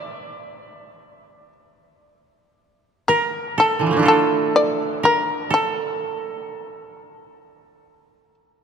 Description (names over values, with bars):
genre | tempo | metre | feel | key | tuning
japanese traditional, Japanese chamber music | 58-65 BPM | 4/4 | rubato | D hirajoshi | A4 = 445 Hz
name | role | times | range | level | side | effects
shamisen | melody | 0.0-8.3 s | A4 to D5 | -20 LUFS | left 2 dB | none
koto | second line | 0.0-8.3 s | D3 to E5 | -21 LUFS | right 4 dB | none
room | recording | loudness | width
wet cathedral reverb, RT60 4.2 s | dark, warm production | -17 LUFS | side -7 dB against mid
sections
0.0-2.1 A section; 2.1-8.6 B section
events
none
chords
none